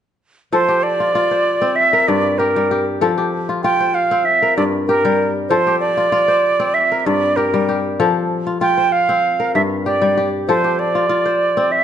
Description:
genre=west african traditional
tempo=96 BPM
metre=4/4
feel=straight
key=F major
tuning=A4 = 440 Hz
part: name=bright silver concert flute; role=melody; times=0.5-11.8 s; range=Bb4 to G5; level=-16 LUFS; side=right 3 dB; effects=none
part: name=kora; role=arpeggios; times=0.5-11.8 s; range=G2 to C5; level=-18 LUFS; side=left 4 dB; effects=none
room=moderate recital hall reverb, RT60 1.7 s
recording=nothing above 10.5 kHz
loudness=-14 LUFS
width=side -9 dB against mid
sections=0.5-11.8 A section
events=none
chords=0.5 F; 1.8 Gm; 3.0 F; 4.3 Gm; 5.5 F; 6.7 Gm; 8.0 F; 9.2 Gm; 10.5 F

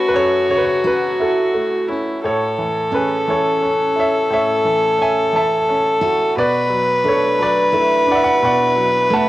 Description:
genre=acoustic folk-pop ballad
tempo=58 BPM (dotted quarters)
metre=6/8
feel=straight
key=A major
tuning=A4 = 440 Hz
part: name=bright upright piano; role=melody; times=0.0-9.3 s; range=F#2 to A5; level=-19 LUFS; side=right 1 dB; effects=cassette tape, plate reverb
part: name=clear viola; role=second line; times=0.0-9.3 s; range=E4 to B4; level=-16 LUFS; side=left 1 dB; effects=cassette tape, plate reverb
part: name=picked steel-string acoustic guitar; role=arpeggios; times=0.0-9.3 s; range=A3 to C#5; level=-26 LUFS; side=right 5 dB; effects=cassette tape
room=light reverb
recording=home recording on cassette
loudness=-14 LUFS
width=side -16 dB against mid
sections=0.0-2.2 A section; 2.2-9.3 B section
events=none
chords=0.0 F#m7; 2.2 Amaj7; 6.4 Bm7

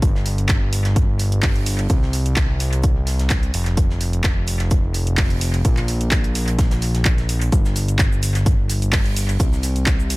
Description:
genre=piano house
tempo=128 BPM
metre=4/4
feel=swing 54% on 16ths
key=G minor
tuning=A4 = 440 Hz
part: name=fat analog bass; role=bass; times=0.0-10.2 s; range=F1 to C2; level=-20 LUFS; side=equal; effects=sidechain pumping
part: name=big rock drum kit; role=drums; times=0.0-10.2 s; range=hi-hat, shaker, snare drum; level=-36 LUFS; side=right 2 dB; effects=sidechain pumping on hats, high-pass filter on hats, high-pass filter on snare, sidechain pumping on perc, high-pass filter on perc, high-pass filter on room, analog delay
part: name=electronic kick drum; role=drums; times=0.0-10.0 s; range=none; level=-18 LUFS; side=equal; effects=none
part: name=punchy analog drum machine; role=drums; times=0.0-10.2 s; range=handclaps, hi-hat, shaker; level=-25 LUFS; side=right 1 dB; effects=analog delay
room=little or no reverb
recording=echo-heavy mix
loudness=-16 LUFS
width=side -22 dB against mid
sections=0.0-10.2 A section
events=none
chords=none

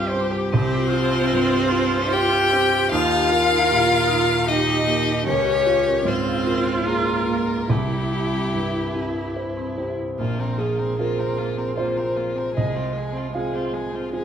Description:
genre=neoclassical piano and strings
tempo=75 BPM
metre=3/4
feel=rubato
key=unclear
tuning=A4 = 440 Hz
part: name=rich violin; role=melody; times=0.0-14.2 s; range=F4 to G5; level=-24 LUFS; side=left 6 dB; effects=tape echo
part: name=clear cello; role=second line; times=0.0-14.2 s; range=C3 to G4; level=-25 LUFS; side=right 3 dB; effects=none
part: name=dark baby grand piano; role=accompaniment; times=0.0-14.2 s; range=Bb1 to F5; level=-24 LUFS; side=right 2 dB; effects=none
part: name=rich viola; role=accompaniment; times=0.0-14.2 s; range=Ab3 to F5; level=-28 LUFS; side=right 1 dB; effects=none
part: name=marimba with medium mallets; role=arpeggios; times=0.0-9.9 s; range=C4 to F5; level=-31 LUFS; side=left 2 dB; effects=none
room=moderate large studio reverb, RT60 0.8 s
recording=band playing live in one room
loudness=-19 LUFS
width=side -8 dB against mid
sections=0.0-10.2 A section; 10.2-14.2 B section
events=none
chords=0.0 Csus4; 2.9 Ebadd9; 5.3 Bbm7/Db; 7.7 C; 10.2 Bbsus2; 12.6 Fm/C

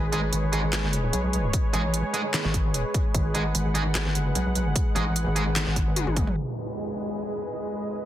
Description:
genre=heavy wobble dubstep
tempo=149 BPM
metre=4/4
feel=swing 53% on 16ths, half-time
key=G# phrygian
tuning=A4 = 441 Hz
part: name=supersaw pad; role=sustained chords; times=0.0-8.1 s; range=C#3 to F#5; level=-31 LUFS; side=equal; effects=sidechain pumping, low-pass filter
part: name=metallic wobble bass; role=bass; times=0.0-6.3 s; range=G#1 to B1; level=-25 LUFS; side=equal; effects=chorus, overdrive
part: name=fuzz guitar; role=stabs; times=0.1-5.4 s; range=G#3 to G#4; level=-32 LUFS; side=right 1 dB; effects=distortion, ping-pong delay
part: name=dubstep drum kit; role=drums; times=0.1-6.5 s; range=crash cymbal, handclaps, hi-hat, snare drum, toms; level=-29 LUFS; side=equal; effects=low-pass filter on hats, low-pass filter on snare, low-pass filter on toms, low-pass filter on cymbals
part: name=electronic kick drum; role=drums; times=1.5-6.3 s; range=none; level=-26 LUFS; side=equal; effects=none
part: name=downlifter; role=sound effects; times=6.4-8.1 s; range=none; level=-35 LUFS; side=right 1 dB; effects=none
room=light reverb, digital ambience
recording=dense, heavily limited modern master, low-pass filter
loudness=-23 LUFS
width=side -12 dB against mid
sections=0.0-6.4 A section; 6.4-8.1 B section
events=drop 0.0-6.4; drum fill 6.0-6.4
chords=0.0 G#m

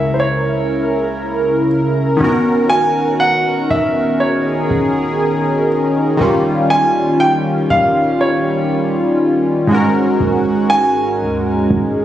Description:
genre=R&B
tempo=60 BPM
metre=4/4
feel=swing 58% on 16ths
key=unclear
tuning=A4 = 437 Hz
part: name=warm baby grand piano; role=melody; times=0.0-12.0 s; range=B#4 to G#5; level=-17 LUFS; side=right 1 dB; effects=tape echo
part: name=warm analog keys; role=accompaniment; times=0.0-12.0 s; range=G#2 to A#4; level=-17 LUFS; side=equal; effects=chorus, phaser
part: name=chorused pulse-width pad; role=sustained chords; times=0.0-12.0 s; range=C#3 to A#4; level=-17 LUFS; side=equal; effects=none
part: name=clean 808-style bass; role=bass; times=0.0-12.0 s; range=D#1 to D#2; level=-26 LUFS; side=equal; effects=none
room=light reverb, digital ambience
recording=recorded on a phone in the room, studio reverb, compression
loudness=-13 LUFS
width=side -12 dB against mid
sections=0.0-12.0 A section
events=none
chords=0.0 C#m6; 2.2 Bmaj9/D#; 6.2 D#9; 9.7 G#9sus4

